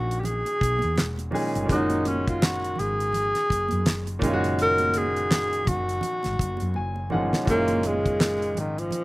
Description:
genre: R&B, neo-soul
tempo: 83 BPM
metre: 4/4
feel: swing 58% on 16ths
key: F# major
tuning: A4 = 436 Hz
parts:
  - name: breathy tenor saxophone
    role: melody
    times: 0.0-9.0 s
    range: D#3 to A#4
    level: -25 LUFS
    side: equal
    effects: none
  - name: bright grand piano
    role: accompaniment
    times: 0.0-9.0 s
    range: A#2 to G#5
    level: -28 LUFS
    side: equal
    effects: slapback echo
  - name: woody fretless electric bass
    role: bass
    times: 0.0-8.9 s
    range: E1 to F#2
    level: -30 LUFS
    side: equal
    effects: none
  - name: damped 70s drum kit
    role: drums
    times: 0.1-9.0 s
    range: handclaps, hi-hat, kick drum, snare drum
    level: -26 LUFS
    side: equal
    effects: none
  - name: congas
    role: percussion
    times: 0.2-9.0 s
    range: none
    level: -37 LUFS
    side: right 5 dB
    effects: none
room: little or no reverb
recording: recorded outdoors, with no room sound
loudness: -22 LUFS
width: side -20 dB against mid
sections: 0.0-7.5 A section; 7.5-9.0 A section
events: grand piano fill 6.4-7.5; drum fill 6.8-7.5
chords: 0.0 Emaj9; 1.7 F#add9; 4.2 F#maj9

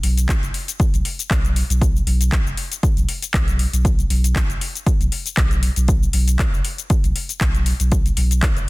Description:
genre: afro house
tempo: 118 BPM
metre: 4/4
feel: swing 55% on 16ths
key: unclear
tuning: A4 = 440 Hz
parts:
  - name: warm sub bass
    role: bass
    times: 0.0-8.6 s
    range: F#1 to B1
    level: -19 LUFS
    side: equal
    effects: sidechain pumping
  - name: afro-pop drum kit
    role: drums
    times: 0.0-8.7 s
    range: handclaps, hi-hat, shaker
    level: -25 LUFS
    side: left 3 dB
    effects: studio reverb
  - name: electronic kick drum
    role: drums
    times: 0.3-8.5 s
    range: none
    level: -19 LUFS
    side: equal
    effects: overdrive, studio reverb
room: little or no reverb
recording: dense, heavily limited modern master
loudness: -16 LUFS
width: side -23 dB against mid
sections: 0.0-8.7 A section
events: none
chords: none

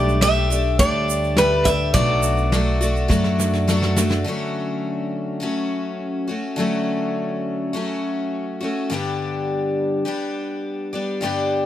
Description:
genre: acoustic folk duo or small band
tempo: 104 BPM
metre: 4/4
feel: straight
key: D major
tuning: A4 = 441 Hz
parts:
  - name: picked steel-string acoustic guitar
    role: melody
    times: 0.0-3.6 s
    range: B4 to E5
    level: -20 LUFS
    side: equal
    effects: none
  - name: picked twelve-string acoustic guitar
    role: accompaniment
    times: 0.0-11.7 s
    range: G2 to G4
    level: -22 LUFS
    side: left 2 dB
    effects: none
  - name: upright bass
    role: bass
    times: 0.0-4.2 s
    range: B1 to F#2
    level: -21 LUFS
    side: right 1 dB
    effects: none
  - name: egg shaker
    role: percussion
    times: 0.1-4.2 s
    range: none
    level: -31 LUFS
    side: right 10 dB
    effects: none
  - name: soft brush drum kit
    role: drums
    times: 0.2-4.2 s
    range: hi-hat, kick drum, snare drum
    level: -24 LUFS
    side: equal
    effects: none
room: light reverb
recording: close, detailed microphones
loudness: -19 LUFS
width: side -12 dB against mid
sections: 0.0-4.3 A section; 4.3-11.7 B section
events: drum fill 3.1-4.3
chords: 0.0 Gadd9/B; 2.0 Bm7; 4.3 Dmaj7; 8.9 G

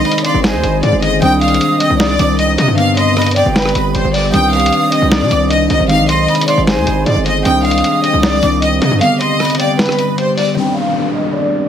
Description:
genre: hip hop, trap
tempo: 154 BPM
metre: 4/4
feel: half-time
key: C harmonic minor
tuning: A4 = 440 Hz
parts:
  - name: rich studio violin section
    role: melody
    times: 0.0-11.7 s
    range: B4 to G5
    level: -16 LUFS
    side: left 1 dB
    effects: low-pass filter, dub echo
  - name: breathy jazz flute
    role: second line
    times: 0.0-10.2 s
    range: G5 to Eb6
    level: -21 LUFS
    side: right 4 dB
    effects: dub echo
  - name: muted felt-like synth keys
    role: accompaniment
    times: 0.0-11.7 s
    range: D3 to Eb4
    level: -17 LUFS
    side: left 2 dB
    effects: chorus, low-pass filter, dub echo
  - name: deep dark ambient pad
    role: sustained chords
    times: 0.0-11.7 s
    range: C3 to Eb5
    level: -21 LUFS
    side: equal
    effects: chorus, built-in reverb, low-pass filter
  - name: distorted 808-style bass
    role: bass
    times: 0.0-9.0 s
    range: G1 to C3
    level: -17 LUFS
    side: right 1 dB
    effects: distortion
  - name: lo-fi sampler-style drum kit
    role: drums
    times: 0.1-10.5 s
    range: hi-hat, rim click, snare drum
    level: -19 LUFS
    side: equal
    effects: dub echo
  - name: downlifter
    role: sound effects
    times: 10.6-11.7 s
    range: none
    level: -22 LUFS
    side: equal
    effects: none
room: light reverb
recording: echo-heavy mix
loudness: -11 LUFS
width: side -9 dB against mid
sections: 0.0-10.6 A section; 10.6-11.7 B section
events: kick muted 9.0-10.6; filter sweep 10.6-11.7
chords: 0.0 Ab; 1.2 Cmadd9; 2.8 G; 4.3 Cmadd9; 5.9 Ab; 7.5 Cmadd9; 9.0 G; 10.6 Cmadd9

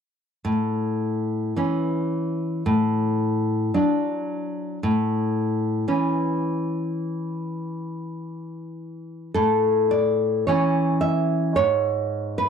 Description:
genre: romantic piece for solo classical guitar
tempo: 45-58 BPM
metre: 2/4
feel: rubato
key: A major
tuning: A4 = 440 Hz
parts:
  - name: nylon-string guitar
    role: solo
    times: 0.4-12.5 s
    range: G#2 to E5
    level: -21 LUFS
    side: equal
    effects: slapback echo
room: light reverb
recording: dry, close 1970s-style studio recording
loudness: -21 LUFS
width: side -7 dB against mid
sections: 0.4-9.3 A section; 9.3-12.5 B section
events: none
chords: 0.4 A; 2.7 D/A; 4.8 A; 11.6 E/G# (rootless)

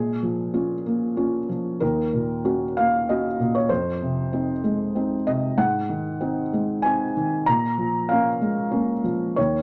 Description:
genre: neoclassical minimalist piano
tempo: 95 BPM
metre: 3/4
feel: rubato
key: unclear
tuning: A4 = 442 Hz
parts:
  - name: felt-muted upright piano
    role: solo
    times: 0.0-9.6 s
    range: Eb2 to Bb5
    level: -23 LUFS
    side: equal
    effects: none
room: moderate studio reverb, RT60 0.9 s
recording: none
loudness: -24 LUFS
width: mono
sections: 0.0-9.6 A section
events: none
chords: 0.0 Bbm7; 1.8 Ebm7; 3.7 Fm7; 5.6 Ab7; 7.5 Bbm7

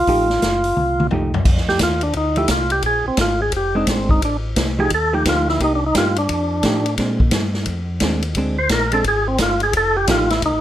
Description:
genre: soul jazz organ trio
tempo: 174 BPM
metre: 4/4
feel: swing 64% on 8ths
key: F mixolydian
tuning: A4 = 440 Hz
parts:
  - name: percussive tonewheel organ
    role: melody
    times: 0.0-10.6 s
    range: C4 to C5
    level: -18 LUFS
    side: equal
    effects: slow rotary speaker
  - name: mellow tonewheel organ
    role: bass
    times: 0.0-10.6 s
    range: F1 to Bb2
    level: -23 LUFS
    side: equal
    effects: overdrive, chorus vibrato, slow rotary speaker
  - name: hollow-body jazz guitar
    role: accompaniment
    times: 0.1-10.3 s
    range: F3 to G4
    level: -21 LUFS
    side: right 2 dB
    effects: none
  - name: swinging big-band drum kit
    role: drums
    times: 0.1-10.5 s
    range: crash cymbal, hi-hat, kick drum, ride cymbal, snare drum, toms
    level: -21 LUFS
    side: equal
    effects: none
room: small room ambience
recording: rough home demo mix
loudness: -16 LUFS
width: side -12 dB against mid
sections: 0.0-1.4 A section; 1.4-10.6 B section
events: drum fill 0.8-1.4; tonewheel organ solo 1.4-10.6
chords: 0.0 F9; 1.4 F7sus2; 2.8 Bb9; 4.2 F9; 5.6 Cm7; 6.3 F9; 7.0 Bb9; 9.7 F9

